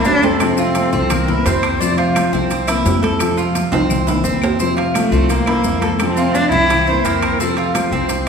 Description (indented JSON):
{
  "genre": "latin, Cuban son and guajira",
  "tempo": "172 BPM",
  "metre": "4/4",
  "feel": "straight",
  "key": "F major",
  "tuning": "A4 = 440 Hz",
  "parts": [
    { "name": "rich cello", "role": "melody", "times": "0.0-1.6, 5.0-7.0 s", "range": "A3 to E4", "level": "-17 LUFS", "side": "left 1 dB", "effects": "none" },
    { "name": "nylon-string guitar", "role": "accompaniment", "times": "0.0-8.3 s", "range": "C3 to F4", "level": "-20 LUFS", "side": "left 2 dB", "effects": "none" },
    { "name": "Cuban tres", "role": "arpeggios", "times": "0.0-8.3 s", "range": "C4 to A4", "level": "-21 LUFS", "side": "right 2 dB", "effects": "none" },
    { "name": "upright bass", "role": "bass", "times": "0.0-8.3 s", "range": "C2 to F2", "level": "-22 LUFS", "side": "equal", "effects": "none" },
    { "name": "maracas", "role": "percussion", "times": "0.0-8.3 s", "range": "none", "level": "-31 LUFS", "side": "left 5 dB", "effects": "none" },
    { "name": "congas", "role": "percussion", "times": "0.1-8.3 s", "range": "none", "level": "-25 LUFS", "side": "left 1 dB", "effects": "none" },
    { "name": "timbales", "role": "percussion", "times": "0.1-8.3 s", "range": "none", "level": "-24 LUFS", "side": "right 4 dB", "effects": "none" },
    { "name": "claves", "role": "percussion", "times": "0.4-7.9 s", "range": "none", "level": "-33 LUFS", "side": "left 4 dB", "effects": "none" },
    { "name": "breathy bright jazz flute", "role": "second line", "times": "0.6-2.7, 6.9-8.3 s", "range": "A4 to D5", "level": "-24 LUFS", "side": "equal", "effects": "none" }
  ],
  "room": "wet recital hall reverb, RT60 1.7 s",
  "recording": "recorded in a church or concert hall",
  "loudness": "-14 LUFS",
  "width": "side -6 dB against mid",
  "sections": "0.0-8.3 A section",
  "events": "drum fill 3.7-4.6",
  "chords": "0.4 F; 1.1 C7; 1.8 F; 2.5 C7; 3.2 F; 3.9 C7; 4.6 F; 5.3 C7; 6.0 F; 6.7 C7; 7.4 F",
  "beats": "0.06 | 0.41 0.76 1.11 1.46 | 1.80 2.15 2.50 2.85 | 3.20 3.55 3.90 4.25 | 4.60 4.95 5.30 5.65 | 6.00 6.35 6.70 7.05 | 7.40 7.75 8.09"
}